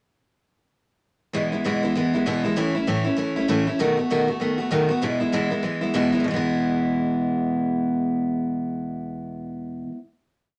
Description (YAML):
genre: rock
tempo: 195 BPM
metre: 4/4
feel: swing 60% on 8ths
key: E major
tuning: A4 = 440 Hz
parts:
  - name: picked steel-string acoustic guitar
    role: solo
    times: 1.3-10.0 s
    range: E2 to F#4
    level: -24 LUFS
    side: equal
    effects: none
room: light reverb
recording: none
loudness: -23 LUFS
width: mono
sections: 1.3-6.3 A section; 6.3-8.7 final chord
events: none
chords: 1.3 E; 2.6 A; 3.8 B7; 5.0 E